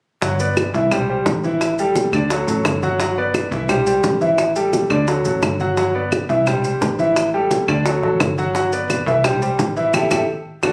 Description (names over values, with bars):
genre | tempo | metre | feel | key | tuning
latin, salsa | 173 BPM | 4/4 | straight | G major | A4 = 440 Hz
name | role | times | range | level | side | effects
clear concert grand piano | accompaniment | 0.2-10.7 s | D3 to F#5 | -20 LUFS | equal | none
plucky analog bass | bass | 0.2-10.7 s | G1 to D2 | -27 LUFS | equal | none
bongos | percussion | 0.2-10.7 s | none | -25 LUFS | equal | none
congas | percussion | 0.2-10.7 s | none | -31 LUFS | equal | none
maracas | percussion | 0.2-10.7 s | none | -36 LUFS | equal | none
claves | percussion | 0.6-10.7 s | none | -28 LUFS | equal | none
room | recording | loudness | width
light reverb | recorded on a phone in the room, club reverb | -18 LUFS | mono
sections
0.2-10.7 A section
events
drum fill 9.9-10.7; band accent 9.9-10.7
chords
0.2 Gmaj7; 0.9 C; 1.6 A5; 2.3 D; 3.0 Gmaj7; 3.7 C; 4.4 A5; 5.1 D; 5.8 Gmaj7; 6.5 C; 7.2 A5; 7.9 D; 8.6 Gmaj7; 9.2 C; 9.9 A5